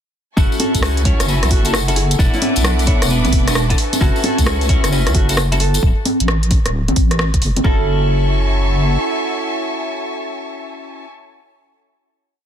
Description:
UK garage, two-step garage; 132 BPM; 4/4; swing 65% on 16ths; F# minor; A4 = 440 Hz
nylon-string guitar; melody; 0.4-11.0 s; A3 to B4; -26 LUFS; right 2 dB; ping-pong delay
warm symphonic violin section; sustained chords; 0.4-11.0 s; E5 to D6; -26 LUFS; left 1 dB; sidechain pumping
clean electric guitar; stabs; 0.4-11.0 s; B3 to C#5; -23 LUFS; left 1 dB; lush chorus, ping-pong delay
deep soft wobble bass; bass; 0.4-9.0 s; D1 to C#2; -17 LUFS; equal; chorus, tube saturation
electronic kick drum; drums; 0.4-7.8 s; -16 LUFS; equal
tambourine; percussion; 0.4-5.8 s; -26 LUFS; left 4 dB
warbly tape-like pad; texture; 1.3-11.3 s; D4 to F#5; -27 LUFS; right 3 dB; chorus, built-in reverb, sidechain pumping
garage drum kit; drums; 0.6-7.6 s; congas, hi-hat, rim click; -20 LUFS; equal; soft clipping on snare
little or no reverb; dense, heavily limited modern master; -14 LUFS; side -9 dB against mid
0.4-7.6 drop; 7.6-11.3 final chord
drop 0.4-7.6
0.4 F#m7; 2.2 E7sus4; 3.8 F#m7; 5.8 D5; 7.6 F#m7

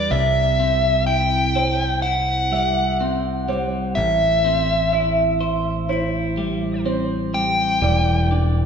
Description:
rock; 62 BPM; 4/4; straight; A4 = 440 Hz
dark smooth lead guitar; melody; 0.0-8.7 s; D5 to G5; -20 LUFS; left 1 dB; overdrive
felt-muted upright piano; arpeggios; 0.0-8.7 s; B4 to E5; -28 LUFS; right 3 dB
twelve-string electric guitar; arpeggios; 0.0-8.7 s; A2 to C5; -25 LUFS; left 1 dB; spring reverb
modern bright picked electric bass; bass; 0.0-8.7 s; E1 to C2; -23 LUFS; right 1 dB
wet recital hall reverb, RT60 1.4 s; recorded in a church or concert hall; -17 LUFS; side -7 dB against mid
0.0-8.7 A section
0.1 C6; 4.0 Am7; 7.8 Em7

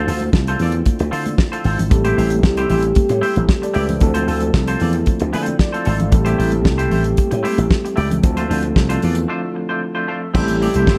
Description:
disco; 114 BPM; 4/4; straight; A minor; A4 = 441 Hz
semi-hollow electric guitar; accompaniment; 0.0-11.0 s; A3 to D5; -27 LUFS; equal
mellow French horn section; sustained chords; 0.0-11.0 s; D3 to G4; -26 LUFS; equal
slap bass with an envelope filter; bass; 0.0-11.0 s; G1 to D3; -21 LUFS; equal
damped 70s drum kit; drums; 0.1-11.0 s; crash cymbal, hi-hat, kick drum, snare drum; -20 LUFS; equal
congas; percussion; 0.2-10.9 s; -29 LUFS; equal
overdriven tine electric piano; accompaniment; 1.9-11.0 s; E3 to F5; -26 LUFS; equal; medium tremolo
little or no reverb; -17 LUFS; mono
0.0-10.3 A section
tine electric piano fill 5.3-6.1; break 9.3-10.3
0.0 Dm7; 1.9 Am7; 4.0 Dm7; 6.1 Am7; 8.2 Dm7; 10.3 Am7

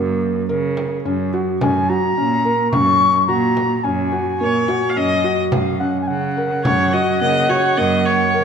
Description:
contemporary instrumental, chamber music in an uneven meter; 107 BPM; 7/4; straight; F# major; A4 = 444 Hz
felt-muted upright piano; arpeggios; 0.0-8.4 s; A#3 to A#4; -21 LUFS; left 1 dB
muted cello; bass; 0.0-8.4 s; F#2 to C#3; -22 LUFS; right 5 dB
frame drum; percussion; 0.2-7.8 s; -26 LUFS; equal
bright reedy baroque flute; melody; 1.6-8.4 s; E#5 to C#6; -19 LUFS; left 2 dB
bright viola; second line; 4.4-8.4 s; C#5 to E#5; -19 LUFS; left 1 dB
moderate concert hall reverb, RT60 1.8 s; minimal, uncompressed stereo recording; -15 LUFS; side -7 dB against mid
0.0-8.4 A section
0.0 F#

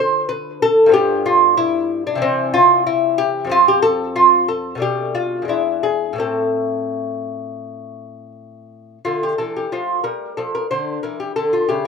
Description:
classical, baroque-style dance for lute; 83-94 BPM; 4/4; rubato; A minor; A4 = 445 Hz
lute; solo; 0.0-11.9 s; E2 to C5; -15 LUFS; equal
little or no reverb; recorded outdoors, with no room sound; -15 LUFS; side -5 dB against mid
0.0-9.1 A section; 9.1-11.9 A section
0.0 Dm; 0.9 G7; 2.2 C; 3.5 F5; 4.8 Bm7b5; 5.5 E7; 6.2 Am; 9.1 Dm

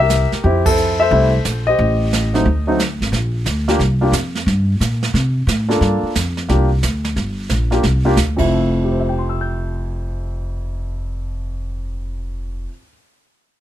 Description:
jazz piano trio; 178 BPM; 4/4; swing 65% on 8ths; F major; A4 = 439 Hz
warm grand piano; melody; 0.0-12.9 s; F2 to G6; -17 LUFS; left 1 dB
upright bass; bass; 0.0-12.7 s; F1 to C3; -18 LUFS; equal
jazz brush drum kit; drums; 0.1-8.4 s; brushed snare drum, crash cymbal, hi-hat, kick drum, ride cymbal, snare drum; -23 LUFS; right 3 dB
little or no reverb; close, detailed microphones; -15 LUFS; side -12 dB against mid
0.0-3.1 A section; 3.1-8.5 B section; 8.5-11.2 C section
band accent 0.6
0.4 Fmaj7; 1.8 Am7b5; 2.5 D7(no3); 3.1 Gm (rootless); 3.8 Csus4; 4.5 Gm; 5.1 N.C.; 5.8 Gm9; 6.5 C9sus4; 7.2 Gm; 7.8 C9sus4; 8.3 Fmaj7

